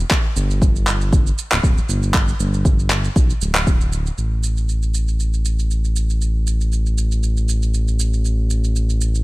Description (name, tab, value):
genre	afro house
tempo	118 BPM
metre	4/4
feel	swing 54% on 16ths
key	unclear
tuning	A4 = 439 Hz
part	smooth synth bass	bass	0.0-9.2 s	D1 to B1	-18 LUFS	equal	sidechain pumping
part	electronic shaker and handclaps	drums	0.0-9.2 s	none	-23 LUFS	right 1 dB	none
part	electronic kick drum	drums	0.1-3.8 s	none	-16 LUFS	equal	none
room	little or no reverb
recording	none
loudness	-16 LUFS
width	side -21 dB against mid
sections	0.0-4.2 A section; 4.2-9.2 B section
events	none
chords	none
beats	| 0.11 0.62 1.12 1.63 | 2.14 2.65 3.16 3.67 | 4.18 4.68 5.19 5.70 | 6.21 6.72 7.23 7.74 | 8.24 8.75